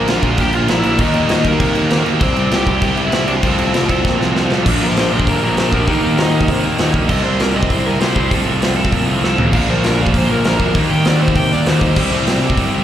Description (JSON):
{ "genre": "punk rock", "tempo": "197 BPM", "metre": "4/4", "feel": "straight", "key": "unclear", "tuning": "A4 = 440 Hz", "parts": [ { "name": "overdriven electric guitar", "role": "melody", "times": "0.0-12.1 s", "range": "Bb3 to G5", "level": "-21 LUFS", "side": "left 1 dB", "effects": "none" }, { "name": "distorted electric guitar", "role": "riff", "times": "0.0-12.8 s", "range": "Bb2 to Bb4", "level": "-23 LUFS", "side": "left 8 dB", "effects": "distortion, slapback echo" }, { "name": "fuzz guitar", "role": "riff", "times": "0.0-12.8 s", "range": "F2 to Eb4", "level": "-22 LUFS", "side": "equal", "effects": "distortion, slapback echo" }, { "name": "tight distorted guitar", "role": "riff", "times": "0.0-12.8 s", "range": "Bb2 to Bb4", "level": "-22 LUFS", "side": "right 9 dB", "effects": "distortion, slapback echo" }, { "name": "fuzz picked electric bass", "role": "bass", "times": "0.0-12.8 s", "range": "A1 to C3", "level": "-19 LUFS", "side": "equal", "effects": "overdrive" }, { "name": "big rock drum kit", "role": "drums", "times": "0.1-12.6 s", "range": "crash cymbal, hi-hat, kick drum, snare drum, toms", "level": "-18 LUFS", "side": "equal", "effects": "none" } ], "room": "little or no reverb", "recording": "live gig heard through the venue's PA, club reverb", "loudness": "-13 LUFS", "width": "side -10 dB against mid", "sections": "0.0-4.7 A section; 4.7-12.8 B section", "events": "drum fill 4.0-4.7, 9.2-9.5; overdriven electric guitar solo 4.7-12.8", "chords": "0.0 Bb; 1.0 Eb; 2.2 C; 3.4 F/C; 4.7 Bb; 5.9 Eb; 7.1 C; 8.3 F/C; 9.5 Bb; 10.7 Eb; 12.0 C" }